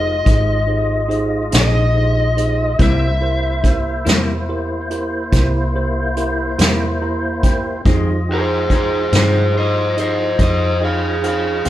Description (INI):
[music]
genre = slow blues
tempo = 47 BPM (dotted quarters)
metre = 12/8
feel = straight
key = F minor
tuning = A4 = 442 Hz
[part]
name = lead guitar through a small cranked amp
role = melody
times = 0.0-11.7 s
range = Ab4 to F5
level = -20 LUFS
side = left 1 dB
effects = overdrive
[part]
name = tine electric piano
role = accompaniment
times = 0.0-11.7 s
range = Eb4 to Bb5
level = -24 LUFS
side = right 4 dB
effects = none
[part]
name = tonewheel organ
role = sustained chords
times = 0.0-11.7 s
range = F3 to Eb5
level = -25 LUFS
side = left 1 dB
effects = slow rotary speaker, overdrive, chorus vibrato
[part]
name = woody fretless electric bass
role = bass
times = 0.0-11.7 s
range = F1 to G2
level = -20 LUFS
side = equal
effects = none
[part]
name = vintage brush drum kit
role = drums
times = 0.3-11.7 s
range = hi-hat, kick drum, snare drum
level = -16 LUFS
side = equal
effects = none
[part]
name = semi-hollow electric guitar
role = accompaniment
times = 1.5-11.7 s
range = F2 to Ab4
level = -22 LUFS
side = left 3 dB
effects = harmonic tremolo
[sound]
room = light reverb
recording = band playing live in one room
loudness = -14 LUFS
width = side -13 dB against mid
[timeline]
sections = 0.0-7.9 A section; 7.9-11.7 B section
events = tine electric piano fill 6.6-7.9; lead electric guitar solo 7.9-11.7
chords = 0.0 Fm7; 2.8 C7; 7.9 Fm7